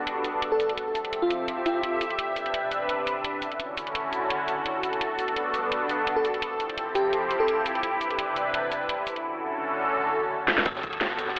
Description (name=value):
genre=liquid drum and bass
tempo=170 BPM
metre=4/4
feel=swing 54% on 16ths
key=G major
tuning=A4 = 441 Hz
part: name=lush unison pad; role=sustained chords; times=0.0-11.4 s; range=G2 to E5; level=-29 LUFS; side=equal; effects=chorus, phaser, sidechain pumping
part: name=drum and bass drum kit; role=drums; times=0.1-11.4 s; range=hi-hat, shaker, snare drum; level=-31 LUFS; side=equal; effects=overdrive
part: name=bell-like FM electric piano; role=melody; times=0.5-2.0, 6.2-7.7 s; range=F4 to A4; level=-30 LUFS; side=equal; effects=chorus, cassette tape, digital delay
part: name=warm sub bass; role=bass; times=10.7-11.4 s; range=G1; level=-54 LUFS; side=equal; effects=none
part: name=crunchy breakbeat drum kit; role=drums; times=10.7-11.4 s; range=ride cymbal, snare drum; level=-33 LUFS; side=equal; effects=high-pass filter on cymbals, high-pass filter on snare, high-pass filter on room
part: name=electronic kick drum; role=drums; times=10.7-10.9 s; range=none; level=-33 LUFS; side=equal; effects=overdrive
part: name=sub drop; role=sound effects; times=10.7-11.4 s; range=none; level=-56 LUFS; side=equal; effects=none
room=wet digital room reverb, RT60 1.0 s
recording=telephone sound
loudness=-27 LUFS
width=mono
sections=0.0-10.7 A section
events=drum fill 10.5; impact 10.7-11.4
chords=0.0 Gmaj9; 0.8 Fmaj9; 2.2 Cmaj9; 3.4 Dmaj9; 5.0 Gmaj9; 6.4 Fmaj9; 7.8 Cmaj9; 9.1 Dmaj9; 10.7 Gmaj9